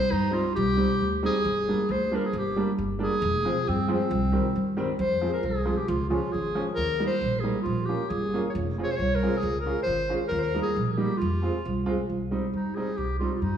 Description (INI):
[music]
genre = klezmer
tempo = 135 BPM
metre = 2/4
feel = straight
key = C minor, F minor from 5.0 s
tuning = A4 = 440 Hz
[part]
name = clear clarinet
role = melody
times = 0.0-13.6 s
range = C4 to Db5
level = -28 LUFS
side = left 1 dB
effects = none
[part]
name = upright bass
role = bass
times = 0.1-13.6 s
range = F1 to G2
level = -29 LUFS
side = equal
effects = none
[part]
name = bright upright piano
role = accompaniment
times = 0.3-13.3 s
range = Eb3 to F4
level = -29 LUFS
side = right 2 dB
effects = none
[sound]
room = wet recital hall reverb, RT60 1.5 s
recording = recorded in a church or concert hall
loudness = -24 LUFS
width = side -9 dB against mid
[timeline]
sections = 0.0-5.0 A section; 5.0-12.1 B section; 12.1-13.6 C section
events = none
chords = 0.0 Cm; 1.4 Gm; 3.2 Fm; 4.1 Cm; 5.0 Fm; 5.9 Db; 6.8 Eb; 7.7 Bbm; 8.5 Fm; 9.4 Db; 10.3 Eb; 11.2 Fm; 12.1 Cm